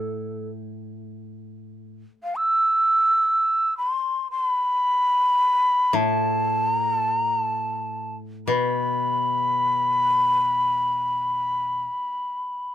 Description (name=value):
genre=japanese traditional, Japanese chamber music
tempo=free time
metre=none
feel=none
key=A hirajoshi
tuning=A4 = 440 Hz
part: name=breathy mellow shakuhachi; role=melody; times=0.0-12.7 s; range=A4 to E6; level=-20 LUFS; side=equal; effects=none
part: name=koto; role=accompaniment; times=0.0-11.9 s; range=A2 to B2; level=-29 LUFS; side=left 3 dB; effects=none
room=light reverb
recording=close, detailed microphones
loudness=-20 LUFS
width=side -11 dB against mid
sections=0.8-12.7 A section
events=none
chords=none